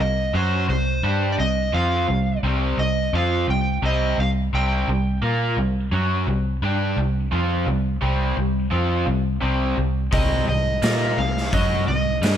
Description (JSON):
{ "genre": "blues rock power trio and southern rock", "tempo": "86 BPM", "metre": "4/4", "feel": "straight", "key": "C minor", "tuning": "A4 = 440 Hz", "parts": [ { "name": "overdriven slide guitar", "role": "melody", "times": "0.0-5.2, 10.1-12.4 s", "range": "C5 to G5", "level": "-25 LUFS", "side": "right 1 dB", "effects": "slapback echo" }, { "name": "raw garage guitar", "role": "riff", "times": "0.0-12.4 s", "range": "C3 to Bb4", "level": "-24 LUFS", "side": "right 1 dB", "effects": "overdrive" }, { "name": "vintage muted fingered electric bass", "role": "bass", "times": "0.0-12.4 s", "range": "C2 to Bb2", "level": "-22 LUFS", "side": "equal", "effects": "none" }, { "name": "raw garage drum kit", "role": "drums", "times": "10.1-12.4 s", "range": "hi-hat, kick drum, snare drum", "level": "-24 LUFS", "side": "equal", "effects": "none" } ], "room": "light reverb", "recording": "none", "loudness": "-19 LUFS", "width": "side -9 dB against mid", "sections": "0.0-12.4 A section", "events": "none", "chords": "0.0 Cm" }